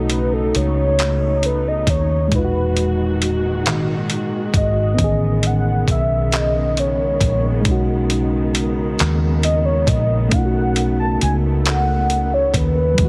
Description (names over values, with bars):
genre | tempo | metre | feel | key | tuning
slow six-eight R&B | 45 BPM (dotted quarters) | 6/8 | straight | B major | A4 = 440 Hz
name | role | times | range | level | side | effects
warm velvety synth lead | melody | 0.0-13.1 s | A4 to A5 | -24 LUFS | equal | chorus
reed electric piano | accompaniment | 0.0-13.1 s | A#2 to G#4 | -25 LUFS | equal | none
dark studio string section | sustained chords | 0.0-13.1 s | A#2 to F#4 | -28 LUFS | equal | none
vintage muted fingered electric bass | bass | 0.0-13.1 s | E1 to E2 | -22 LUFS | equal | none
dusty soul sampler-style drum kit | drums | 0.1-13.1 s | handclaps, hi-hat, kick drum | -24 LUFS | equal | none
room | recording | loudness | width
little or no reverb | heavily compressed radio sound, multiband compression | -18 LUFS | mono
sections
0.0-13.1 A section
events
soft synth lead solo 0.0-13.1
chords
0.0 B9; 2.3 Emaj9#11; 5.0 Amaj9#11; 7.7 B69; 10.3 B9